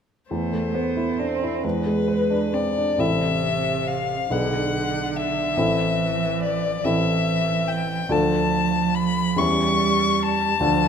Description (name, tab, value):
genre	classical, slow romantic movement for piano trio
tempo	42-49 BPM (dotted quarters)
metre	6/8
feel	rubato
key	A minor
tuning	A4 = 444 Hz
part	rich violin	melody	0.3-10.9 s	B4 to C#6	-24 LUFS	left 6 dB	none
part	warm cello	second line	0.3-10.9 s	C3 to C4	-25 LUFS	right 7 dB	none
part	warm baby grand piano	accompaniment	0.3-10.9 s	A1 to C5	-24 LUFS	left 1 dB	none
room	wet recital hall reverb, RT60 1.4 s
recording	none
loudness	-20 LUFS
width	side -7 dB against mid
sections	0.3-3.0 A section; 3.0-10.9 B section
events	none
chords	0.3 Am/E; 1.6 E7; 3.0 Am; 4.3 G#dim/B; 5.6 Am; 8.1 Dm; 9.4 C#dim/E